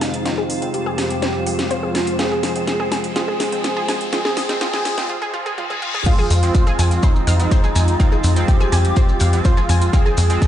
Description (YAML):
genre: melodic techno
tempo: 124 BPM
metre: 4/4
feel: straight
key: F minor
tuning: A4 = 440 Hz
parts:
  - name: wide unison lead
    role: melody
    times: 0.0-10.5 s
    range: Eb4 to Ab4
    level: -24 LUFS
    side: equal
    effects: sidechain pumping, tape echo
  - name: lush unison pad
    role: sustained chords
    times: 0.0-5.1 s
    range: F2 to F4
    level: -28 LUFS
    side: left 1 dB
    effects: chorus, sidechain pumping
  - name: analog pluck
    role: arpeggios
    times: 0.0-10.1 s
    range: F4 to Ab6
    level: -27 LUFS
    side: equal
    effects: chorus, sidechain pumping, dub echo
  - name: sync-sweep polysynth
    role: stabs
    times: 0.0-10.5 s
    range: F3 to C4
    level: -27 LUFS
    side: right 2 dB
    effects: chorus, sidechain pumping, dub echo
  - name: house drum kit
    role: drums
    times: 0.0-10.5 s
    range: crash cymbal, hi-hat, snare drum, toms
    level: -26 LUFS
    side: equal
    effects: none
  - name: riser and reverse cymbal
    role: sound effects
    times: 0.5-6.1 s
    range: none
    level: -31 LUFS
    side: left 3 dB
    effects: none
  - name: granular cloud pad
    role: texture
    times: 0.0-10.5 s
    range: F4 to G5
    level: -29 LUFS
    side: equal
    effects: built-in reverb, sidechain pumping
  - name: electronic kick drum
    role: drums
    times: 6.1-10.5 s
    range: none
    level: -15 LUFS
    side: equal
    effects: none
  - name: maracas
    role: percussion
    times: 6.1-10.5 s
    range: none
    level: -31 LUFS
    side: left 3 dB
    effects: none
  - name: tight sequencer bass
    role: bass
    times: 6.3-10.4 s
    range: F2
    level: -15 LUFS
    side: equal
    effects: sidechain pumping
room: digital ambience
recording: played on a big sound system in a bare room, stone room reverb, high-pass filter, nothing above 10.9 kHz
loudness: -16 LUFS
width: side -11 dB against mid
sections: 0.0-6.1 A section; 6.1-10.5 B section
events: build-up 0.0-6.1; drum fill 0.0-5.1, 5.6-6.1; filter sweep on synth arpeggio sound 0.0-6.1; filter sweep on analog synth lead 0.0-6.1; filter sweep on analog polysynth 0.0-6.1; filter sweep on analog synth pad 0.0-6.1; filter sweep 0.0-6.1; riser 0.5-5.1; break 5.1-6.1; reverse cymbal 5.1-6.1; drop 6.1-10.5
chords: 0.0 Fm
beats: | 0.26 0.74 1.22 1.71 | 2.19 2.68 3.16 3.64 | 4.13 4.61 5.09 5.58 | 6.06 6.55 7.03 7.51 | 8.00 8.48 8.97 9.45 | 9.93 10.42